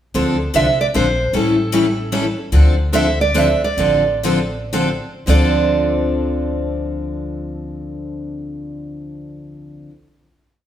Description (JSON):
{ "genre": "acoustic string swing (jazz manouche)", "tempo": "105-151 BPM", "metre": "3/4", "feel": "swing 62% on 8ths", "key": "D minor", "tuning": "A4 = 440 Hz", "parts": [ { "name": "picked steel-string acoustic guitar", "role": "accompaniment", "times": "0.1-9.9 s", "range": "D3 to A4", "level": "-22 LUFS", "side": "left 5 dB", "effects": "none" }, { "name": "picked steel-string acoustic guitar", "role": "accompaniment", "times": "0.1-9.9 s", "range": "D3 to A4", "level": "-22 LUFS", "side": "right 1 dB", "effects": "none" }, { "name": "upright bass", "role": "bass", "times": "0.1-9.8 s", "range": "A1 to D2", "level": "-20 LUFS", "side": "equal", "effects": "none" }, { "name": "picked steel-string acoustic guitar", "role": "melody", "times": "0.6-9.9 s", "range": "A4 to E5", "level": "-20 LUFS", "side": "right 4 dB", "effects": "none" } ], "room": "wet stone room reverb, RT60 1.0 s", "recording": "band playing live in one room, faint mains hum", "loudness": "-15 LUFS", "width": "side -10 dB against mid", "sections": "0.1-5.3 A section; 5.3-8.7 final chord", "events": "slowing down 2.5-5.3", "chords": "0.1 Dm7; 1.3 A7; 2.5 Dm7", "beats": "| 0.14 0.54 0.94 | 1.34 1.74 2.13 | 2.53 2.94 3.35 | 3.78 4.24 4.73 | 5.28 5.85 6.42 | 6.99 7.56 8.13" }